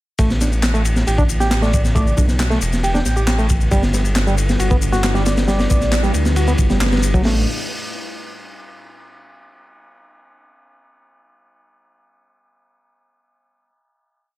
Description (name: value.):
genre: breakbeat, breaks.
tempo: 136 BPM.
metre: 4/4.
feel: straight.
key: unclear.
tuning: A4 = 440 Hz.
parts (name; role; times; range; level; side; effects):
barky reed electric piano; riff; 0.2-7.5 s; F#3 to G4; -23 LUFS; right 1 dB; overdrive, tube saturation, dub echo.
dark detuned saw bass; bass; 0.2-7.5 s; E1 to D2; -18 LUFS; equal; none.
crunchy breakbeat drum kit; drums; 0.2-7.4 s; hi-hat, kick drum, ride cymbal, snare drum; -19 LUFS; equal; none.
electronic shaker and handclaps; drums; 0.2-7.2 s; none; -27 LUFS; left 2 dB; none.
soft struck synth lead; melody; 1.6-6.1 s; D5 to G5; -27 LUFS; right 1 dB; chorus, old record sound, dub echo.
warbly tape-like pad; sustained chords; 4.1-7.5 s; G3 to B4; -28 LUFS; left 4 dB; chorus, built-in reverb, vintage 12-bit sampler grit, sidechain pumping.
room: small room ambience.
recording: none.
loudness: -14 LUFS.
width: side -17 dB against mid.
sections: 0.2-7.2 drop; 7.2-9.0 final chord.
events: drop 0.2-7.2.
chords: 0.2 N.C.; 3.7 G6; 7.2 N.C..